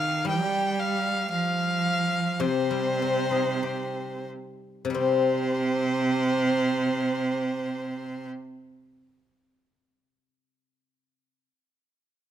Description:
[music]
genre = chinese traditional, Chinese chamber ensemble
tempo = 45-60 BPM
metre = 4/4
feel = rubato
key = C yu mode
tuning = A4 = 441 Hz
[part]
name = rich erhu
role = melody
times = 0.0-8.3 s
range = C5 to G5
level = -29 LUFS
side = left 1 dB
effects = none
[part]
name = bright cello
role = second line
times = 0.0-8.3 s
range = C3 to G3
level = -27 LUFS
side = right 4 dB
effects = none
[part]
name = guzheng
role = accompaniment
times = 0.0-11.5 s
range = C3 to G4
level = -29 LUFS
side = left 6 dB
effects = none
[sound]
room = moderate recital hall reverb, RT60 1.4 s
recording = close, detailed microphones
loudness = -24 LUFS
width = side -10 dB against mid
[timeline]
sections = 0.0-5.0 A section; 5.0-10.1 B section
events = slowing down 0.0-5.0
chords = none

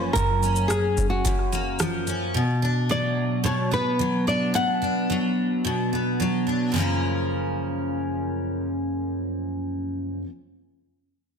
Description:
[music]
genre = acoustic pop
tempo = 109 BPM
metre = 4/4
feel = straight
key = F# major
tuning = A4 = 440 Hz
[part]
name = flamenco guitar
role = melody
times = 0.0-6.2 s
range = F#4 to F#5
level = -26 LUFS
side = equal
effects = none
[part]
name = picked steel-string acoustic guitar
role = accompaniment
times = 0.0-10.3 s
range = F#2 to A#4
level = -24 LUFS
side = equal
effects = double-tracked left and right
[part]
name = booming analog drum machine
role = drums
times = 0.2-2.2 s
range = kick drum, rim click, shaker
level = -27 LUFS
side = equal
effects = none
[sound]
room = light reverb, studio ambience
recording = dense, heavily limited modern master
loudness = -22 LUFS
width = side -6 dB against mid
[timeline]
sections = 0.0-6.7 A section; 6.7-9.0 B section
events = none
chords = 0.0 F#maj7; 2.3 Bm; 6.7 F#maj7

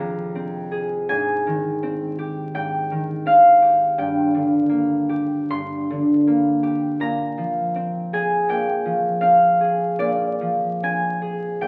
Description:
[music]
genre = classical, solo harp piece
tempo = 81 BPM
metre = 4/4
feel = uneven beats, rubato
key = unclear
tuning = A4 = 439 Hz
[part]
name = concert harp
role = solo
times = 0.0-11.7 s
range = F2 to C6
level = -20 LUFS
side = equal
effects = none
[sound]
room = wet large studio reverb, RT60 1.4 s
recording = very old 78 rpm record, vinyl crackle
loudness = -20 LUFS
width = mono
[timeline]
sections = 0.0-11.7 A section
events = none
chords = 0.0 Fm; 1.1 Abmaj7; 4.0 Gm; 7.0 Bb13

